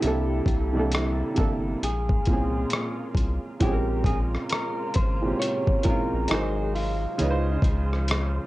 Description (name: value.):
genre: lo-fi hip hop.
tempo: 67 BPM.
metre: 4/4.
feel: swing 61% on 16ths.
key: unclear.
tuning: A4 = 435 Hz.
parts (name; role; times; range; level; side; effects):
electric guitar at the edge of break-up; melody; 0.0-7.6 s; F4 to Db5; -32 LUFS; equal; low-pass filter, analog delay, plate reverb.
clear upright piano; accompaniment; 0.0-8.5 s; Bb2 to C5; -28 LUFS; right 2 dB; cassette tape, low-pass filter.
muted studio string section; sustained chords; 0.0-8.5 s; Bb2 to C5; -36 LUFS; equal; low-pass filter.
saturated sub bass; bass; 0.0-8.4 s; G1 to Db2; -27 LUFS; equal; transformer saturation.
dusty soul sampler-style drum kit; drums; 0.0-8.4 s; hi-hat, kick drum, rim click; -25 LUFS; equal; vintage 12-bit sampler grit.
room: moderate studio ambience, RT60 0.5 s.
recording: worn, warbling old tape, cassette tape, warbly pitch drift.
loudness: -22 LUFS.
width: side -17 dB against mid.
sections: 0.0-3.6 A section; 3.6-8.5 B section.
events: none.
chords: 0.0 C13; 1.8 Bbm7; 6.3 Ab9; 7.2 Dbmaj7.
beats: | 0.03 0.92 1.82 2.71 | 3.61 4.50 5.40 6.30 | 7.19 8.09.